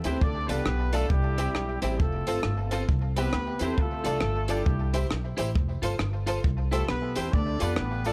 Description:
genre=ska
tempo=135 BPM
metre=4/4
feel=swing 62% on 8ths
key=C major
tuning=A4 = 440 Hz
part: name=warm horn section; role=melody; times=0.0-8.1 s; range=G3 to D5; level=-34 LUFS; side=equal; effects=analog delay
part: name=tack piano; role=stabs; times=0.0-8.1 s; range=C4 to D5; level=-37 LUFS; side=equal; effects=analog delay
part: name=upright bass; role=bass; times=0.0-8.1 s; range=F1 to F2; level=-32 LUFS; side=equal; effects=none
part: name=compact cocktail drum kit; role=drums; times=0.0-8.1 s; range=hi-hat, kick drum, rim click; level=-32 LUFS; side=equal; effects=none
part: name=tambourine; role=percussion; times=0.0-8.1 s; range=none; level=-52 LUFS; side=equal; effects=none
part: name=clean electric guitar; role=accompaniment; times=0.1-8.1 s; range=E4 to D5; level=-37 LUFS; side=equal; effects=none
room=light reverb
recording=vinyl crackle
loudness=-27 LUFS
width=mono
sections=0.0-8.1 A section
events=none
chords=0.2 Dm; 1.1 C; 2.0 F; 2.9 C; 3.8 Dm; 4.7 C; 5.6 F; 6.4 C; 7.3 Dm

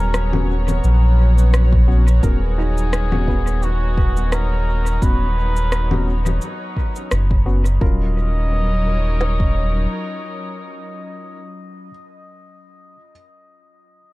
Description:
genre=ambient dub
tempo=86 BPM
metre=4/4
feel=swing 55% on 16ths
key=Eb minor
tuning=A4 = 441 Hz
part: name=trumpet with cup mute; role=melody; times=0.0-11.4 s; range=F#4 to Eb5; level=-29 LUFS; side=equal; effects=dub echo
part: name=dark studio string section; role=sustained chords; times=0.0-11.4 s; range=F#3 to C#5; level=-30 LUFS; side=left 1 dB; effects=vintage 12-bit sampler grit
part: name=felt-muted upright piano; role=arpeggios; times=0.0-13.1 s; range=B3 to Bb4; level=-34 LUFS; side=right 5 dB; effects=dub echo
part: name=warm sub bass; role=bass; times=0.0-9.9 s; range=Eb1 to Bb1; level=-16 LUFS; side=equal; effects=none
part: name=bubbling stepped-filter texture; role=texture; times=0.0-7.8 s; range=B3 to C#5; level=-33 LUFS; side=right 2 dB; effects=chorus, built-in reverb
part: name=electronic rim click, cabasa and congas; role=drums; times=0.1-7.8 s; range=none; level=-26 LUFS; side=left 2 dB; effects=dub echo
part: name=mellow tine electric piano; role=stabs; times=0.3-11.9 s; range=Gb3 to F#4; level=-31 LUFS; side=left 4 dB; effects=overdrive, vintage 12-bit sampler grit, dub echo
part: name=organic electronic drum kit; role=drums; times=1.7-9.5 s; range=kick drum, snare drum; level=-19 LUFS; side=equal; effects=none
room=little or no reverb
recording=echo-heavy mix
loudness=-15 LUFS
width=side -20 dB against mid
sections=0.0-7.8 A section; 7.8-10.6 B section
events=none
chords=0.0 Bsus2/Eb; 7.8 Ebm7

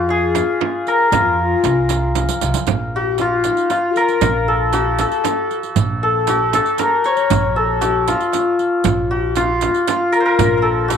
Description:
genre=Persian modal ensemble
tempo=78 BPM (dotted quarters)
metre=6/8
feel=straight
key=Bb avaz esfahan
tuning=A4 = 439 Hz
part: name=santur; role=melody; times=0.0-11.0 s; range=F4 to Db5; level=-17 LUFS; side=left 1 dB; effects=none
part: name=breathy mellow low ney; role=second line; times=0.0-11.0 s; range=Eb4 to Db5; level=-23 LUFS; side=left 10 dB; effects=none
part: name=upright bass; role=bass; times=0.0-11.0 s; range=Bb1 to F2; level=-22 LUFS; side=right 1 dB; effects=none
part: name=tombak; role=percussion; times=0.1-11.0 s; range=none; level=-27 LUFS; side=right 7 dB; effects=none
part: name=frame drum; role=percussion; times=0.3-11.0 s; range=none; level=-24 LUFS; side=right 10 dB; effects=none
part: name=riq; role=percussion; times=0.4-11.0 s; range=none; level=-27 LUFS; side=right 13 dB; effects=none
room=moderate spring reverb, RT60 1.2 s, small room ambience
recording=1960s-style stereo with parts hard left and right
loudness=-14 LUFS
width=side -7 dB against mid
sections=0.0-2.7 A section; 2.7-11.0 B section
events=drum fill 2.2-2.7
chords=none

